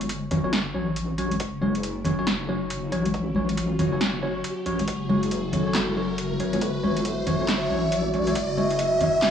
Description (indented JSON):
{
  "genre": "deep dubstep",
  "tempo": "138 BPM",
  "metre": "4/4",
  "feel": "swing 62% on 16ths, half-time",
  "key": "F# phrygian",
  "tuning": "A4 = 439 Hz",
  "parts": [
    { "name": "dark analog pad", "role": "sustained chords", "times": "0.0-9.3 s", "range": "F#4 to E5", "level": "-29 LUFS", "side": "left 1 dB", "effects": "chorus, cassette tape" },
    { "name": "wobble bass", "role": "bass", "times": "0.0-9.3 s", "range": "F#1 to A1", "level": "-30 LUFS", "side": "equal", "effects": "chorus, tube saturation" },
    { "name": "deep house drum kit", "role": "drums", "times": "0.0-9.3 s", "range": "handclaps, hi-hat, snare drum", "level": "-28 LUFS", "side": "equal", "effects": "overdrive, cassette tape" },
    { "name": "riser", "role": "sound effects", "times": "0.7-9.3 s", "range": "none", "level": "-33 LUFS", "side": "equal", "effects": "none" },
    { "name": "bell-like tine electric piano", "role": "stabs", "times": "0.3-9.1 s", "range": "F#3 to C#5", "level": "-29 LUFS", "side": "right 1 dB", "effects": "medium stereo tremolo, low-pass filter, cassette tape, dub echo" },
    { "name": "congas", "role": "percussion", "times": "0.3-9.1 s", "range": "none", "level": "-29 LUFS", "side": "left 2 dB", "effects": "dub echo" },
    { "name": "electronic kick drum", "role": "drums", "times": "1.4-8.5 s", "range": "none", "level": "-35 LUFS", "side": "left 1 dB", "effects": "overdrive, high-pass filter on kick, cassette tape" }
  ],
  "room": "wet spring reverb, RT60 2.2 s",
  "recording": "home recording on cassette, small room ambience",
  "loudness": "-22 LUFS",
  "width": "side -8 dB against mid",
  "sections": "0.0-9.3 A section",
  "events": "build-up 0.0-9.3; filter sweep on analog synth pad 0.0-9.3; riser 0.7-9.3",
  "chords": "0.0 F#5"
}